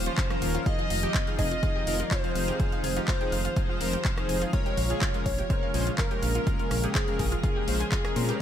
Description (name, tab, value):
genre	progressive house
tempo	124 BPM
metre	4/4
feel	straight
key	unclear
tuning	A4 = 440 Hz
part	plucky unison lead	melody	0.0-8.4 s	Ab4 to Eb5	-34 LUFS	left 1 dB	sidechain pumping, ping-pong delay
part	warm studio violin section	second line	0.0-8.4 s	Ab4 to Eb5	-38 LUFS	left 2 dB	vintage 12-bit sampler grit, sidechain pumping, dub echo
part	airy breathy pad	sustained chords	0.0-8.4 s	Db3 to G5	-37 LUFS	right 1 dB	chorus, sidechain pumping
part	analog pluck	arpeggios	0.0-8.4 s	F3 to F6	-38 LUFS	right 2 dB	chorus, sidechain pumping, dub echo
part	dark detuned saw bass	bass	0.0-8.3 s	Eb1 to Bb2	-30 LUFS	equal	sidechain pumping
part	twinkling granular texture	texture	0.0-8.4 s	F5 to F6	-42 LUFS	right 1 dB	built-in reverb, sidechain pumping
part	soft supersaw	stabs	0.1-8.4 s	F3 to C5	-34 LUFS	left 2 dB	sidechain pumping, dub echo
part	house drum kit	drums	0.1-8.4 s	handclaps, hi-hat, rim click	-34 LUFS	left 1 dB	sidechain pumping on hats, sidechain pumping on cymbals
part	electronic kick drum	drums	0.2-8.0 s	none	-28 LUFS	equal	none
room	digital ambience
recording	none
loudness	-24 LUFS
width	side -10 dB against mid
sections	0.0-8.4 A section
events	none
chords	0.0 Eb9; 0.7 Fm7; 4.5 Bbm7